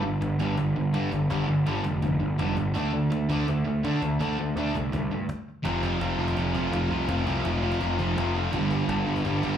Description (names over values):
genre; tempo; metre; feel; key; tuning
punk rock; 166 BPM; 4/4; straight; unclear; A4 = 441 Hz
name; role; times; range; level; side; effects
crunchy overdriven guitar; riff; 0.0-9.6 s; F2 to D4; -29 LUFS; right 7 dB; none
overdriven semi-hollow guitar; riff; 0.0-9.6 s; F2 to D4; -30 LUFS; left 8 dB; none
fuzz picked electric bass; bass; 0.0-9.6 s; F1 to D3; -28 LUFS; equal; overdrive
cajon; drums; 0.2-9.5 s; none; -38 LUFS; equal; none
thick fuzz guitar; riff; 5.6-9.6 s; F2 to G3; -31 LUFS; equal; distortion
room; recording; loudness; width
little or no reverb; live gig heard through the venue's PA, club reverb; -24 LUFS; side -9 dB against mid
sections
0.0-5.6 A section; 5.6-9.6 B section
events
stop 5.3-5.6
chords
0.0 G5; 2.7 D5; 5.6 F5; 8.5 G5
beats
0.21 0.58 0.94 | 1.30 1.66 2.02 2.39 | 2.75 3.11 3.47 3.83 | 4.20 4.56 4.92 5.28 | 5.64 6.00 6.36 6.72 | 7.09 7.45 7.81 8.17 | 8.53 8.89 9.25